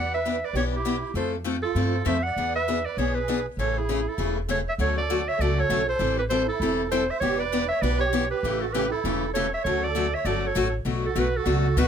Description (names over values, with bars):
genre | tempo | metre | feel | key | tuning
acoustic string swing (jazz manouche) | 198 BPM | 4/4 | swing 60% on 8ths | A major, D major from 4.8 s | A4 = 438 Hz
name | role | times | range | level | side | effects
clear clarinet | melody | 0.0-11.9 s | G4 to F#5 | -27 LUFS | right 2 dB | plate reverb
musette accordion | second line | 0.0-11.9 s | E4 to D5 | -32 LUFS | right 12 dB | none
picked steel-string acoustic guitar | accompaniment | 0.0-11.9 s | B2 to A4 | -27 LUFS | left 5 dB | none
upright bass | bass | 0.0-11.9 s | E1 to G2 | -28 LUFS | equal | none
room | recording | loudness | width
light reverb | none | -23 LUFS | side -8 dB against mid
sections
0.0-4.8 A section; 4.8-11.9 B section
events
none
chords
0.0 Em7; 1.1 Fmaj7; 2.4 E7; 3.6 Amaj7; 4.8 Dmaj7; 6.0 Am7; 7.2 Em7; 8.4 A7; 9.6 Dmaj7; 10.9 Bm7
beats
0.23 0.53 0.84 | 1.14 1.45 1.75 2.05 | 2.36 2.66 2.97 3.27 | 3.58 3.88 4.18 4.49 | 4.79 5.09 5.40 5.70 | 6.00 6.31 6.61 6.92 | 7.22 7.52 7.83 8.13 | 8.43 8.73 9.04 9.34 | 9.64 9.95 10.25 10.55 | 10.86 11.16 11.46 11.77